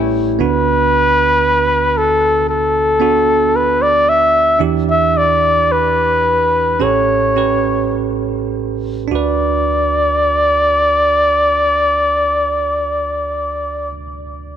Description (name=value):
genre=pop ballad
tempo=51-58 BPM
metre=4/4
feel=straight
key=D major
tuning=A4 = 436 Hz
part: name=bell-like tine electric piano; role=accompaniment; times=0.0-14.6 s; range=A1 to B4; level=-19 LUFS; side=right 7 dB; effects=fast stereo tremolo
part: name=clear flugelhorn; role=melody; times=0.4-13.9 s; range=A4 to E5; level=-13 LUFS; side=left 1 dB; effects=none
room=moderate echo chamber reverb, RT60 2.1 s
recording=1960s-style stereo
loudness=-12 LUFS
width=side -9 dB against mid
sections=0.0-9.1 A section; 9.1-13.9 B section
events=slowing down 0.4-9.1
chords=0.4 D6; 4.6 Em7; 6.8 A7; 9.1 D6